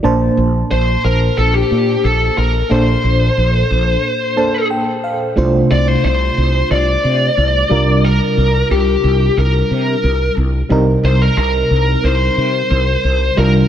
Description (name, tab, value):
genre	1980s-style pop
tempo	90 BPM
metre	4/4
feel	straight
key	C dorian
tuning	A4 = 438 Hz
part	FM electric piano with tremolo	accompaniment	0.0-13.7 s	Bb2 to A5	-17 LUFS	right 1 dB	phaser
part	mellow fretless electric bass	bass	0.0-13.6 s	Bb1 to C3	-16 LUFS	equal	lush chorus
part	bluesy overdriven lead guitar	melody	0.7-13.7 s	G4 to D5	-17 LUFS	left 2 dB	distortion
room	light reverb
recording	none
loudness	-12 LUFS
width	side -10 dB against mid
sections	0.0-5.4 A section; 5.4-13.7 B section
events	break 4.0-5.4; FM electric piano fill 4.0-5.4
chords	0.0 Bbmaj9; 5.4 Dm7/C; 7.7 Gm7/C; 10.7 Cm7